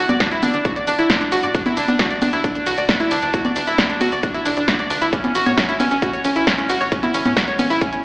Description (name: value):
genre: uplifting trance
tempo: 134 BPM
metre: 4/4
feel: straight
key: unclear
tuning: A4 = 440 Hz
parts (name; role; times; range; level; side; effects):
- analog pluck; arpeggios; 0.0-8.0 s; C#4 to D5; -18 LUFS; equal; chorus, sidechain pumping, tape echo
- tight sequencer bass; bass; 0.0-7.8 s; D1 to A2; -29 LUFS; equal; sidechain pumping
- punchy analog drum machine; drums; 0.1-8.0 s; congas, hi-hat, ride cymbal, shaker, snare drum; -20 LUFS; equal; overdrive
- electronic kick drum; drums; 0.2-7.9 s; none; -24 LUFS; equal; none
room: moderate lush hall reverb, RT60 2.3 s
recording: played on a big sound system in a bare room, large studio reverb, AM radio sound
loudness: -16 LUFS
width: side -24 dB against mid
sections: 0.0-8.0 A section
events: none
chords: 0.0 G5; 1.5 N.C.; 5.1 A